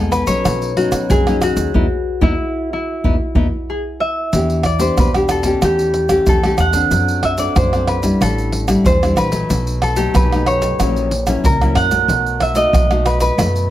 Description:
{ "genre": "samba and choro", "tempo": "93 BPM", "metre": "4/4", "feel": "straight", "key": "E major, E minor from 4.3 s", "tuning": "A4 = 435 Hz", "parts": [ { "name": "concert harp", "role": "melody", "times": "0.0-13.7 s", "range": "E4 to F#5", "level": "-18 LUFS", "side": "equal", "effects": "none" }, { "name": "nylon-string guitar", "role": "accompaniment", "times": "0.0-13.7 s", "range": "F#2 to A4", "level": "-20 LUFS", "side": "left 2 dB", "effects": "none" }, { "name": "upright bass", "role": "bass", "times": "0.0-13.7 s", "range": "A1 to E3", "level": "-20 LUFS", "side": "equal", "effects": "none" }, { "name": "tube shaker, pandeiro, tamborim and surdo", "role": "percussion", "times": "0.1-13.7 s", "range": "none", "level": "-19 LUFS", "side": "right 1 dB", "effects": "none" } ], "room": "moderate studio reverb, RT60 0.6 s", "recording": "none", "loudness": "-14 LUFS", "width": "side -13 dB against mid", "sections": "0.0-4.3 A section; 4.3-13.7 B section", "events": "band accent 1.7-4.3", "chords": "0.5 Badd9; 1.7 E5; 4.3 Em7; 5.6 A7/E; 6.9 D7/F#; 8.2 A7sus4; 9.5 B7; 10.8 F#7/A#; 12.1 B7", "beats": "0.46 1.10 | 1.75 2.40 3.04 3.69 | 4.33 4.98 5.63 6.28 | 6.92 7.57 8.21 8.86 | 9.51 10.15 10.80 11.45 | 12.09 12.74 13.38" }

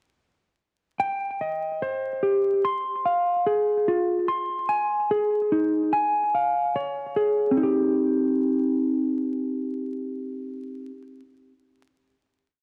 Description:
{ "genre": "hip hop, drill", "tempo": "146 BPM", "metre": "4/4", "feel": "half-time", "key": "C phrygian", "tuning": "A4 = 444 Hz", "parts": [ { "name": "mellow electric guitar", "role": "solo", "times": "1.0-11.0 s", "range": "C4 to C6", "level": "-25 LUFS", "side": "equal", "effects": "analog delay" } ], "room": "light reverb", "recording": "home recording on cassette, vinyl crackle", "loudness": "-24 LUFS", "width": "mono", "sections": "1.0-7.6 breakdown; 7.6-10.9 final chord", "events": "none", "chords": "1.0 Cm; 2.6 Fm; 4.3 Ab; 5.9 Db; 7.6 Cm", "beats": "| 1.00 1.41 1.82 2.23 | 2.64 3.05 3.46 3.88 | 4.29 4.70 5.11 5.52 | 5.93 6.34 6.75 7.16 | 7.57 7.98 8.39 8.81 | 9.22 9.63 10.04 10.45" }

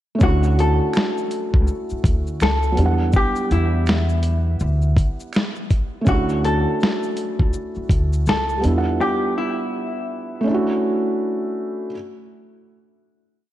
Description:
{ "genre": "lo-fi hip hop", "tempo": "82 BPM", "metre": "4/4", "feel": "swing 63% on 16ths", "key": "D major", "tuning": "A4 = 440 Hz", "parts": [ { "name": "vintage hollow-body jazz guitar", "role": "melody", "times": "0.2-11.9 s", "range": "E4 to A4", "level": "-25 LUFS", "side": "left 2 dB", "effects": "analog delay" }, { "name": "felt-muted upright piano", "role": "accompaniment", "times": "0.2-11.9 s", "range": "F#3 to F#5", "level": "-23 LUFS", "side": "right 2 dB", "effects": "cassette tape" }, { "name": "upright bass", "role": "bass", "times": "0.2-9.0 s", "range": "C#2 to E2", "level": "-19 LUFS", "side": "equal", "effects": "none" }, { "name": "dusty soul sampler-style drum kit", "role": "drums", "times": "0.2-8.8 s", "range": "hi-hat, kick drum, shaker, snare drum", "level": "-20 LUFS", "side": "equal", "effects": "overdrive, vintage 12-bit sampler grit" }, { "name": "finger snap", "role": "percussion", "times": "0.9-5.5 s", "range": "none", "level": "-38 LUFS", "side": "right 5 dB", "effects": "none" } ], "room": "light reverb", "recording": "cassette tape", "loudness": "-18 LUFS", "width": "side -13 dB against mid", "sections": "0.2-11.9 A section", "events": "none", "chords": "0.2 Dmaj9; 2.8 Em7; 6.1 Dmaj9; 8.6 Em7; 10.5 Dmaj7", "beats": "| 0.22 0.95 1.68 2.41 | 3.14 3.88 4.61 5.34 | 6.07 6.80 7.53 8.27 | 9.00 9.73 10.46 11.19" }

